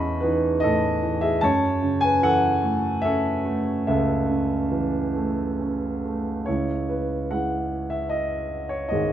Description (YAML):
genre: classical, lyrical solo piano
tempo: 66-77 BPM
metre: 3/4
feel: rubato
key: unclear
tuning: A4 = 440 Hz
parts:
  - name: dark concert grand piano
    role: solo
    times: 0.0-9.1 s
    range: G#1 to C#6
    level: -21 LUFS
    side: right 1 dB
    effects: none
room: moderate recital hall reverb, RT60 1.8 s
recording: none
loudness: -21 LUFS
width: side -11 dB against mid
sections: 0.0-6.5 A section; 6.5-9.1 B section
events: none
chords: 0.0 Aadd9; 1.4 F#m7; 6.5 C#m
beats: 0.61 | 1.41 2.22 3.03 | 3.86 4.71 5.59 | 6.47 7.31 8.12 | 8.93